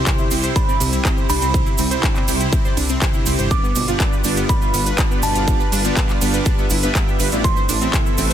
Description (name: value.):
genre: progressive house.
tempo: 122 BPM.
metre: 4/4.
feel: straight.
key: C major.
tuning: A4 = 440 Hz.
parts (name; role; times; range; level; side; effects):
glassy synth bell; melody; 0.0-8.3 s; A5 to D6; -26 LUFS; right 3 dB; chorus, sidechain pumping, digital delay.
lush unison pad; sustained chords; 0.0-8.3 s; C3 to B4; -30 LUFS; left 1 dB; chorus, sidechain pumping.
soft supersaw; stabs; 0.0-8.3 s; G2 to E5; -24 LUFS; right 3 dB; wide subtle chorus, sidechain pumping, ping-pong delay.
analog pluck; arpeggios; 0.1-8.3 s; B2 to C5; -27 LUFS; left 1 dB; chorus, cassette tape, sidechain pumping, ping-pong delay.
big-room dance drum kit; drums; 0.1-8.3 s; handclaps, hi-hat, ride cymbal; -24 LUFS; right 1 dB; none.
electronic kick drum; drums; 0.1-8.0 s; none; -19 LUFS; equal; none.
cabasa; percussion; 0.1-8.3 s; none; -29 LUFS; right 5 dB; none.
dark detuned saw bass; bass; 0.3-8.3 s; G1 to C2; -22 LUFS; equal; tube saturation, sidechain pumping.
room: little or no reverb.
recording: dense, heavily limited modern master.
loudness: -15 LUFS.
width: side -10 dB against mid.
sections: 0.0-8.3 A section.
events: none.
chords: 0.0 C; 3.5 G7; 7.4 Amadd9.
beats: 0.07 0.56 1.05 | 1.54 2.03 2.53 3.02 | 3.51 4.00 4.49 4.99 | 5.48 5.97 6.46 6.95 | 7.44 7.93.